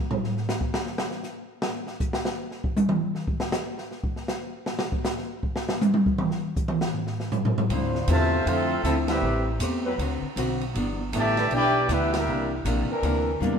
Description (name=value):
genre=jazz, big band swing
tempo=158 BPM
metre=4/4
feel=swing 64% on 8ths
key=D minor from 7.7 s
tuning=A4 = 440 Hz
part: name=open jazz drum kit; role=drums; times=0.1-13.6 s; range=hi-hat, kick drum, ride cymbal, snare drum, toms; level=-27 LUFS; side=equal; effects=none
part: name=archtop guitar, miked and amplified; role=accompaniment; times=7.7-13.6 s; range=G2 to B4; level=-30 LUFS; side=left 2 dB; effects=none
part: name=dark trombone section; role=sustained chords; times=7.7-13.4 s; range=E3 to C5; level=-32 LUFS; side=equal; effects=none
part: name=upright bass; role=bass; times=7.7-13.6 s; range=G1 to F2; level=-27 LUFS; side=equal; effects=none
part: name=warm trumpet section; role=melody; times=8.1-12.5 s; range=C4 to A5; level=-26 LUFS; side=equal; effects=none
part: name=warm trombone section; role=second line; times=8.1-12.5 s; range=C3 to G4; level=-29 LUFS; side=right 2 dB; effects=none
room=moderate echo chamber reverb, RT60 1.8 s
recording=heard from further back in the room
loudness=-23 LUFS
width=side -7 dB against mid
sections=0.0-7.7 A section; 7.7-13.6 B section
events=drum solo 0.0-7.7; band accent 9.0, 12.1; drum fill 13.4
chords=0.0 N.C.; 7.7 Dm9; 9.2 Am9; 10.0 D6; 10.7 G6; 12.3 C9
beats=| 0.11 0.49 0.87 1.25 | 1.63 2.01 2.39 2.77 | 3.15 3.53 3.91 4.29 | 4.67 5.05 5.43 5.81 | 6.19 6.57 6.95 7.33 | 7.71 8.09 8.47 8.85 | 9.23 9.61 9.99 10.37 | 10.75 11.13 11.51 11.89 | 12.27 12.65 13.03 13.41